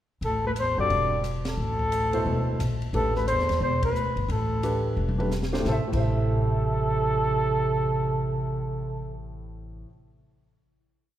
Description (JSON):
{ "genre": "modal jazz", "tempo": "177 BPM", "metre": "4/4", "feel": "swing 62% on 8ths", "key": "A minor", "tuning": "A4 = 441 Hz", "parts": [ { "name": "dark trumpet", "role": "melody", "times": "0.2-9.1 s", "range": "A4 to D5", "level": "-27 LUFS", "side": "equal", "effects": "none" }, { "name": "mellow bass clarinet", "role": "second line", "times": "0.2-9.1 s", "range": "D2 to C3", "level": "-30 LUFS", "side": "equal", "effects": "none" }, { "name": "upright bass", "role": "bass", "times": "0.2-9.8 s", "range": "E1 to E2", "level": "-29 LUFS", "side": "equal", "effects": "none" }, { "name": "compact cocktail drum kit", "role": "drums", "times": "0.2-6.0 s", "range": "crash cymbal, hi-hat, kick drum, ride cymbal, rim click, snare drum, toms", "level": "-36 LUFS", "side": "left 1 dB", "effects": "none" }, { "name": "warm upright piano", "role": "accompaniment", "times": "0.8-9.9 s", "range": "A2 to E5", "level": "-33 LUFS", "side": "equal", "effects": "none" } ], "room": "wet concert hall reverb, RT60 2.1 s", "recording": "recorded in a church or concert hall", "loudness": "-23 LUFS", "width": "side -12 dB against mid", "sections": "0.2-5.7 A section; 5.7-8.4 final chord", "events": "band accent 1.4, 3.8; drum fill 5.0-5.7", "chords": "0.2 A9sus4; 5.7 Am", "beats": "| 0.22 0.56 0.90 1.24 | 1.58 1.92 2.26 2.60 | 2.94 3.27 3.61 3.95 | 4.29 4.63 4.97 5.31 | 5.65 5.99 6.33 6.67 | 7.01 7.35 7.69 8.03" }